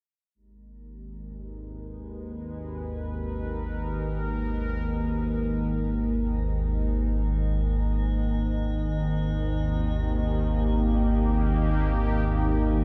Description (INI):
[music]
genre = dark ambient drone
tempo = free time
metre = none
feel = none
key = G# harmonic minor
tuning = A4 = 437 Hz
[part]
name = sweeping resonant pad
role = sustained chords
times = 0.3-12.8 s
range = D#3 to B4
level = -37 LUFS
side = equal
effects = chorus, shimmer reverb
[part]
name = organ-like drone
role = drone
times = 0.9-12.8 s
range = G#1 to D#2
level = -28 LUFS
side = equal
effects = ensemble chorus, built-in reverb
[part]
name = metallic inharmonic drone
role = texture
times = 1.5-12.8 s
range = D#4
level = -45 LUFS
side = equal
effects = chorus, built-in reverb, shimmer reverb
[sound]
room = moderate huge ambient reverb, RT60 7.5 s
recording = none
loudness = -27 LUFS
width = mono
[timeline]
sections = 0.4-12.8 A section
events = fade-in on analog synth pad 0.4-12.8; fade-in on synth drone 0.4-12.8; filter sweep on synth drone 0.4-12.8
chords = 0.4 G#m; 8.0 D#